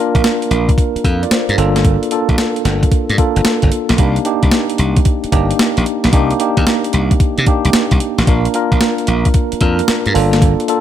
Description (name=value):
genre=R&B, new jack swing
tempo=112 BPM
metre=4/4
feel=swing 67% on 16ths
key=C dorian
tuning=A4 = 441 Hz
part: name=tine electric piano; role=accompaniment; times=0.0-10.8 s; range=Bb3 to F5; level=-16 LUFS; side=equal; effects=medium stereo tremolo
part: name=glassy slap bass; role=bass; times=0.1-10.5 s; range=G1 to C3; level=-16 LUFS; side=equal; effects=none
part: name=clean 12-bit digital drum machine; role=drums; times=0.1-10.8 s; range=hi-hat, kick drum, snare drum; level=-14 LUFS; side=equal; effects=overdrive
room=little or no reverb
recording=none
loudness=-12 LUFS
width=side -10 dB against mid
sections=0.0-10.8 A section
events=none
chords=0.0 Bb; 1.6 Gm7; 4.0 Cm7; 8.3 Bb; 10.2 Gm7